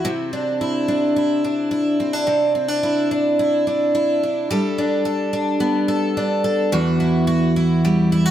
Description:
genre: pop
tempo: 108 BPM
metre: 4/4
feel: straight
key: unclear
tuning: A4 = 441 Hz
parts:
  - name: picked twelve-string acoustic guitar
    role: solo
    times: 0.0-8.3 s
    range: E2 to A4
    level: -17 LUFS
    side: equal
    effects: none
room: moderate plate reverb, RT60 2.6 s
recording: heard from further back in the room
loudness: -17 LUFS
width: side -11 dB against mid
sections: 0.0-4.5 A section; 4.5-8.3 B section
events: none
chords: 0.0 Cadd9; 4.5 Gadd9; 6.7 Emadd9

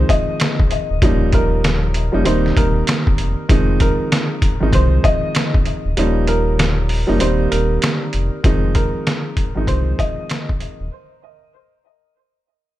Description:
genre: hip hop, boom-bap hip-hop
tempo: 97 BPM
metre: 4/4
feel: swing 61% on 16ths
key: F minor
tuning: A4 = 440 Hz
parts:
  - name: warm upright piano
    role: melody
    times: 0.0-10.5 s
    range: Bb4 to Eb5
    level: -24 LUFS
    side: equal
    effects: high-pass filter, low-pass filter, ping-pong delay
  - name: dark concert grand piano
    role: accompaniment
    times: 0.0-10.8 s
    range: Eb3 to Eb4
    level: -21 LUFS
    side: right 1 dB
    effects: cassette tape, high-pass filter, low-pass filter
  - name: sub bass with octave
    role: bass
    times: 0.0-10.9 s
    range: D1 to C2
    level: -18 LUFS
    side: equal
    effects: none
  - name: trip hop sampler-style drum kit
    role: drums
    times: 0.1-10.8 s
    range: hi-hat, kick drum, snare drum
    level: -18 LUFS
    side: equal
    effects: none
room: little or no reverb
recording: none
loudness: -15 LUFS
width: side -14 dB against mid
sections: 0.0-8.4 A section; 8.4-12.8 B section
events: kick muted 6.0-8.4; fade-out 8.4-12.8; break 10.9-12.8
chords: 0.0 Fm7; 1.0 Eb9; 2.3 Cm7/Eb; 3.5 Fm7; 6.0 Eb9; 7.2 Cm7/Eb; 8.4 Fm7; 10.9 N.C.

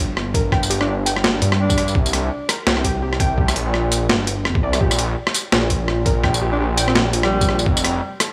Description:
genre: half-time drum and bass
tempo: 168 BPM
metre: 4/4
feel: swing 57% on 16ths, half-time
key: unclear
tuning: A4 = 437 Hz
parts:
  - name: dark detuned saw bass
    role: bass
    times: 0.0-8.0 s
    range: F1 to G2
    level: -23 LUFS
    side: equal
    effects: tube saturation
  - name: boom bap sampler-style drum kit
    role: drums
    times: 0.2-8.3 s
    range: hi-hat, rim click, snare drum, tambourine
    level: -23 LUFS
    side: equal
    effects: overdrive
  - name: warbly dusty pluck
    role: arpeggios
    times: 0.3-8.3 s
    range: G4 to G5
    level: -31 LUFS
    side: equal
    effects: chorus, vintage 12-bit sampler grit, analog delay
  - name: electronic kick drum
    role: drums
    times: 0.3-7.7 s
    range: none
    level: -23 LUFS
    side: equal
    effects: overdrive
  - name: mellow alto saxophone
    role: melody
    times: 0.8-2.0, 6.5-7.6 s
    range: G3 to D4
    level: -27 LUFS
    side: equal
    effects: analog delay
room: little or no reverb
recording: dry, gritty hardware recording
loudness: -19 LUFS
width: mono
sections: 0.0-8.3 A section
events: none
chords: 0.0 G5; 2.0 C5; 4.8 Bb5; 7.7 F

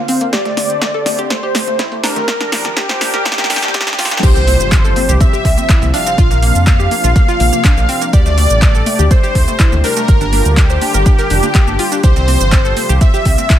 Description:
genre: progressive house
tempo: 123 BPM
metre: 4/4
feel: straight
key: G dorian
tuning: A4 = 440 Hz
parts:
  - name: soft supersaw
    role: melody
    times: 0.0-13.6 s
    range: G4 to F5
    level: -17 LUFS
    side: equal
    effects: phaser, sidechain pumping, low-pass filter, ping-pong delay
  - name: warm analog pad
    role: sustained chords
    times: 0.0-13.6 s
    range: C3 to C5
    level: -25 LUFS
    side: equal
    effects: chorus, tremolo, sidechain pumping
  - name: analog pluck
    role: arpeggios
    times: 0.0-13.6 s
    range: A3 to C5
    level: -21 LUFS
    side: equal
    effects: chorus, sidechain pumping, ping-pong delay
  - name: deep house drum kit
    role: drums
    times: 0.1-13.6 s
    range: crash cymbal, handclaps, hi-hat, shaker, snare drum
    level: -19 LUFS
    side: right 1 dB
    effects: sidechain pumping on perc, sidechain pumping on hats, sidechain pumping on cymbals
  - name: dusty soul sampler-style drum kit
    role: drums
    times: 0.1-13.6 s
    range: hi-hat, snare drum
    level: -30 LUFS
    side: right 1 dB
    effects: none
  - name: electronic kick drum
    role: drums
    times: 0.3-13.6 s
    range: none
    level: -11 LUFS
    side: equal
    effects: overdrive, high-pass filter on kick, high-pass filter on room
  - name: congas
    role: percussion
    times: 0.6-13.5 s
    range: none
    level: -27 LUFS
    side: left 6 dB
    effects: overdrive, sidechain pumping on perc
  - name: round analog bass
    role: bass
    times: 4.2-13.4 s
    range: F1 to F2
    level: -14 LUFS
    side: equal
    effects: tube saturation, sidechain pumping
  - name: impact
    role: sound effects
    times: 4.2-6.2 s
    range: none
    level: -22 LUFS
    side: equal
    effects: none
room: digital ambience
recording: high-pass filter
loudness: -10 LUFS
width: side -11 dB against mid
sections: 0.0-4.2 A section; 4.2-13.6 B section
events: build-up 0.0-4.2; drum fill 0.0-4.2; filter sweep on supersaw synth 0.0-4.2; filter sweep 0.0-4.2; drop 4.2-13.6; impact 4.2-6.2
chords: 0.3 D7sus4; 2.3 Gm7; 4.2 Csus4; 6.2 Bbadd9; 8.1 D7sus4; 10.1 Gm7; 12.0 Csus4

